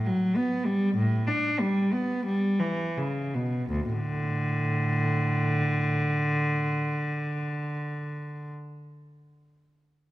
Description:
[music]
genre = classical, baroque-style suite movement for unaccompanied cello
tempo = 40-51 BPM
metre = 4/4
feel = rubato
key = D major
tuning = A4 = 443 Hz
[part]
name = dark cello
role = solo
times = 0.0-8.5 s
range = D2 to D4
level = -25 LUFS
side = equal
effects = none
[sound]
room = wet recital hall reverb, RT60 1.8 s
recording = none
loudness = -25 LUFS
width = side -16 dB against mid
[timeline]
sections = 0.0-3.7 A section; 3.7-9.4 B section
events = slowing down 0.0-3.7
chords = 0.0 Gmaj7; 1.0 A7; 3.7 D5

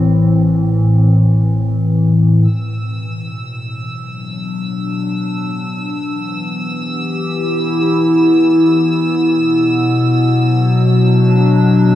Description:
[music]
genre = ambient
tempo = 71 BPM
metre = 4/4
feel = straight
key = unclear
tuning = A4 = 439 Hz
[part]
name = warbly tape-like pad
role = sustained chords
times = 0.0-12.0 s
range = A2 to G4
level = -12 LUFS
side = left 1 dB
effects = chorus, built-in reverb
[part]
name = deep rumbling drone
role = bass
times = 0.0-2.5 s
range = A1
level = -37 LUFS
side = equal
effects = none
[part]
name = warm studio violin section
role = texture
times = 2.5-12.0 s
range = E6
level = -26 LUFS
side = right 3 dB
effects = none
[sound]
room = wet cathedral reverb, RT60 7.0 s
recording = in a vast, echoing space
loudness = -12 LUFS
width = side -12 dB against mid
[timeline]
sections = 0.0-2.5 A section; 2.5-12.0 B section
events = fade-in on ambient pad 2.5-12.0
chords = 0.0 Am; 2.5 Bm; 5.9 Em; 9.3 Bm

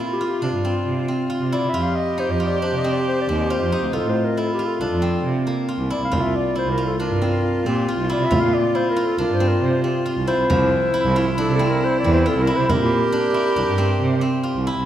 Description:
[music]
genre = contemporary instrumental, chamber music in an uneven meter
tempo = 137 BPM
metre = 5/4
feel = straight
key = C mixolydian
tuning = A4 = 440 Hz
[part]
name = mellow clarinet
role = melody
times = 0.0-14.5 s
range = F4 to F5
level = -25 LUFS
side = left 2 dB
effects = none
[part]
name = rich viola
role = second line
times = 0.0-14.7 s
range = E4 to G4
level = -24 LUFS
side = left 1 dB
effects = none
[part]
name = steel-string zither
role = arpeggios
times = 0.0-14.9 s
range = F3 to F4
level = -24 LUFS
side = right 1 dB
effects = none
[part]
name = rich cello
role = bass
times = 0.4-14.9 s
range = C2 to C3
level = -23 LUFS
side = right 2 dB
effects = none
[part]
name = frame drum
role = percussion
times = 6.1-14.0 s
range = none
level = -27 LUFS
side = right 1 dB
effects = none
[sound]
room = moderate concert hall reverb, RT60 2.0 s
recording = none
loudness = -18 LUFS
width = side -11 dB against mid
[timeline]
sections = 0.0-14.9 A section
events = none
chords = 0.0 Csus4; 1.7 F5; 3.9 Bbmaj7/C; 6.1 C7sus4; 10.5 F5/C; 12.7 C7

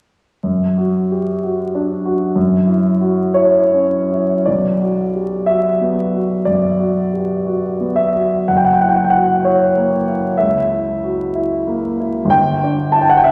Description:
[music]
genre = classical, romantic nocturne for solo piano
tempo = 61 BPM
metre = 4/4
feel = uneven beats, rubato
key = B minor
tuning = A4 = 440 Hz
[part]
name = warm grand piano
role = solo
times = 0.4-13.3 s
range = F#1 to A5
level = -16 LUFS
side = equal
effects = none
[sound]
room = wet scoring stage reverb, RT60 1.5 s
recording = vinyl crackle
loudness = -16 LUFS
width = mono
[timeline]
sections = 0.4-4.5 A section; 4.5-13.3 B section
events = none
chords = 0.4 Dadd11/F#; 2.4 F#5; 4.5 Bm; 8.5 F#7; 12.3 G5

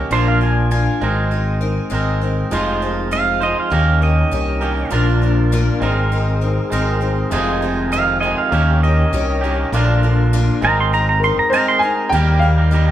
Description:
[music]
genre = rock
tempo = 100 BPM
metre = 4/4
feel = straight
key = unclear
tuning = A4 = 440 Hz
[part]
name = picked twelve-string acoustic guitar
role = accompaniment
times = 0.0-12.9 s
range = F2 to Bb4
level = -24 LUFS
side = left 6 dB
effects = none
[part]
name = twangy electric guitar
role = riff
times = 0.0-12.9 s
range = F2 to C5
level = -22 LUFS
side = right 4 dB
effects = none
[part]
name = pedal steel guitar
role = second line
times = 0.1-12.1 s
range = C5 to C6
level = -19 LUFS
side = right 4 dB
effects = none
[part]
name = fingered electric bass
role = bass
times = 0.1-12.9 s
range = F1 to Eb2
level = -17 LUFS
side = equal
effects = none
[part]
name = tonewheel organ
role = sustained chords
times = 2.5-12.9 s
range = C4 to Bb4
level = -31 LUFS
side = equal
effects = overdrive, fast rotary speaker
[part]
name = dark baby grand piano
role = melody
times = 11.2-12.9 s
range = Bb4 to Ab5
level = -19 LUFS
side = left 1 dB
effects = none
[sound]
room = moderate large studio reverb, RT60 0.9 s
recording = band playing live in one room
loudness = -14 LUFS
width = side -12 dB against mid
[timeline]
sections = 0.0-12.1 A section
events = pedal steel guitar solo 0.0-12.1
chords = 0.1 Bb; 1.0 Abadd9; 2.5 Fm7; 3.7 Eb7; 4.9 Bb; 5.8 Abadd9; 7.3 Fm7; 8.5 Eb7; 9.7 Bb; 10.6 Abadd9; 12.1 Eb

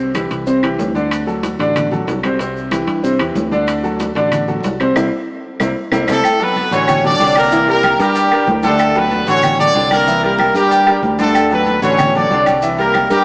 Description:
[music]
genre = latin, salsa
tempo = 188 BPM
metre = 4/4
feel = straight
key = D major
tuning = A4 = 442 Hz
[part]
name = clear concert grand piano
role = accompaniment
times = 0.0-13.2 s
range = C3 to E5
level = -17 LUFS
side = equal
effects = none
[part]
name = fingered electric bass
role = bass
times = 0.0-13.2 s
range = A1 to G2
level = -22 LUFS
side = equal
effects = none
[part]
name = claves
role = percussion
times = 0.1-13.1 s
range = none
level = -26 LUFS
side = left 1 dB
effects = none
[part]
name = congas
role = percussion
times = 0.1-13.1 s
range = none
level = -25 LUFS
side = equal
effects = none
[part]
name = maracas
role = percussion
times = 0.1-13.2 s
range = none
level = -37 LUFS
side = left 1 dB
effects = none
[part]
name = timbales and agogo bells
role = percussion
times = 0.2-13.1 s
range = none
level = -19 LUFS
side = right 1 dB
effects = none
[part]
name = brilliant horn section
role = melody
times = 6.1-13.2 s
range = G3 to D5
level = -14 LUFS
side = equal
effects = none
[sound]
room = wet plate reverb, RT60 2.8 s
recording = heard from further back in the room, small speaker sound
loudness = -12 LUFS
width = side -26 dB against mid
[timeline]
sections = 0.0-6.2 A section; 6.2-13.2 B section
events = band accent 5.0-6.2; drum fill 5.4-6.2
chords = 0.0 C; 1.1 D; 2.4 C; 3.7 D; 5.0 C7; 6.2 Dmaj7; 7.5 C7; 8.8 Dmaj7; 10.1 C7; 11.3 Dmaj7; 12.6 C7

